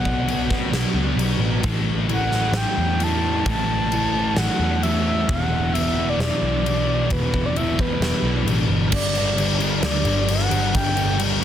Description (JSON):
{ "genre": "rock, shoegaze and dream pop", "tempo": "132 BPM", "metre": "4/4", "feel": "straight", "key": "unclear", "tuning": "A4 = 441 Hz", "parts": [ { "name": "breathy flute-like synth lead", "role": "melody", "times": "0.0-11.2 s", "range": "B4 to A5", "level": "-26 LUFS", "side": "equal", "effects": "chorus, analog delay" }, { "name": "fuzz guitar", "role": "riff", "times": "0.0-11.4 s", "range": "E2 to B3", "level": "-23 LUFS", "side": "equal", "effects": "distortion, analog chorus" }, { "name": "vintage muted picked electric bass", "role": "bass", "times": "0.0-11.4 s", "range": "E1 to E2", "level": "-25 LUFS", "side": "equal", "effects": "none" }, { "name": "huge arena drum kit", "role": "drums", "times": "0.1-11.3 s", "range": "crash cymbal, kick drum, snare drum", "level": "-24 LUFS", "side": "equal", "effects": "none" } ], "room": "studio ambience", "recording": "dense, heavily limited modern master", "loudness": "-18 LUFS", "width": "side -10 dB against mid", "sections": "0.0-8.9 A section; 8.9-11.4 B section", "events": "none", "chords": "0.0 B7(no3); 1.6 A5; 5.3 E7(no3); 8.9 G5", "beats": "0.27 0.73 1.18 | 1.64 2.09 2.55 3.00 | 3.46 3.92 4.37 4.83 | 5.28 5.74 6.20 6.65 | 7.11 7.56 8.02 8.47 | 8.93 9.39 9.84 10.30 | 10.75 11.21" }